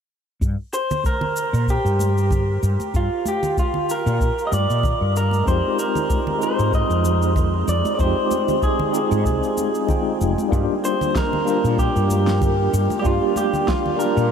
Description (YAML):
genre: sunset chillout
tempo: 95 BPM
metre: 4/4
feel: swing 55% on 16ths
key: unclear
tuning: A4 = 441 Hz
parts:
  - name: woody fretless electric bass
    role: bass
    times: 0.4-14.3 s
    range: F1 to Bb2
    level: -20 LUFS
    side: equal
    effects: ensemble chorus
  - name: electronic cabasa and snare drum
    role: drums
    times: 0.4-14.3 s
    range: none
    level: -32 LUFS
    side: left 1 dB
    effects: none
  - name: electronic kick drum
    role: drums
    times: 0.4-13.8 s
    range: none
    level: -23 LUFS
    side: equal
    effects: none
  - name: electric guitar through a small old amp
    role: melody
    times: 0.7-14.3 s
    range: F4 to Eb5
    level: -22 LUFS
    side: equal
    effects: diffuse ambient delay
  - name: congas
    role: percussion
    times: 0.9-14.0 s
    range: none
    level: -32 LUFS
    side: right 3 dB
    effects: none
  - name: barky tine electric piano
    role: accompaniment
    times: 5.4-14.3 s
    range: G3 to G5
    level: -22 LUFS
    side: moving between left 4 dB and right 5 dB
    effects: medium stereo tremolo, auto-pan, diffuse ambient delay
room: wet huge ambient reverb, RT60 8.4 s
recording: dreamy mix soaked in reverb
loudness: -18 LUFS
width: side -7 dB against mid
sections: 0.4-14.3 A section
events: none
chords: 0.4 Gm; 5.5 Fm7; 10.5 Gm7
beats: | 0.42 1.05 1.68 2.31 | 2.94 3.57 4.21 4.84 | 5.47 6.10 6.73 7.36 | 8.00 8.63 9.26 9.89 | 10.52 11.15 11.78 12.42 | 13.05 13.68 14.31